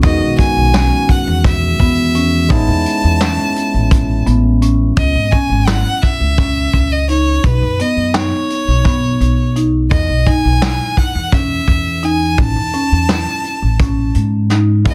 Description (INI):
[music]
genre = progressive instrumental, band music in an uneven meter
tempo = 170 BPM (eighths)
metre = 7/8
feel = straight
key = unclear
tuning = A4 = 441 Hz
[part]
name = bright violin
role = melody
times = 0.0-14.9 s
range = B4 to A5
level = -22 LUFS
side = equal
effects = plate reverb
[part]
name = barky tine electric piano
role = accompaniment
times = 0.0-4.9, 14.8-14.9 s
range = D#3 to F#4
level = -23 LUFS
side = equal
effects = plate reverb
[part]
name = marimba with medium mallets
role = arpeggios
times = 0.0-14.7 s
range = B3 to E4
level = -22 LUFS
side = equal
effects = plate reverb
[part]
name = upright bass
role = bass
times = 0.0-14.9 s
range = G#1 to G#2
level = -18 LUFS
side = equal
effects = none
[part]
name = vintage brush drum kit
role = drums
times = 0.0-14.9 s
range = hi-hat, kick drum, snare drum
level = -19 LUFS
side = equal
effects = soft clipping on kick, soft clipping on snare
[sound]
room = light reverb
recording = dense, heavily limited modern master, faint mains hum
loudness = -14 LUFS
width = mono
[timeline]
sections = 0.0-5.0 A section; 5.0-14.9 B section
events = none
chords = 0.0 Emaj7; 2.5 Amaj7; 5.0 C#madd9; 7.4 B; 9.9 Emaj7; 12.4 Amaj7